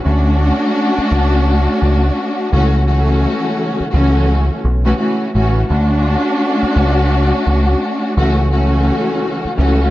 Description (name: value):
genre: hip hop, boom-bap hip-hop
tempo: 85 BPM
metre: 4/4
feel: swing 62% on 16ths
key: unclear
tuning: A4 = 440 Hz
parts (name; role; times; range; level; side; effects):
- warm symphonic string section; accompaniment; 0.0-9.9 s; C#2 to F#4; -15 LUFS; left 1 dB; cassette tape, high-pass filter, low-pass filter
- deep dub picked electric bass; bass; 0.1-9.9 s; A1 to D2; -14 LUFS; equal; none
room: light reverb, small room ambience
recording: dark, warm production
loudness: -12 LUFS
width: side -16 dB against mid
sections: 0.0-9.9 A section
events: none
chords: 0.0 Dmaj7; 2.5 A6/C#; 5.7 Dmaj7; 8.2 A6/C#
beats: | 0.05 0.76 1.46 2.17 | 2.87 3.58 4.28 4.99 | 5.70 6.40 7.11 7.81 | 8.52 9.22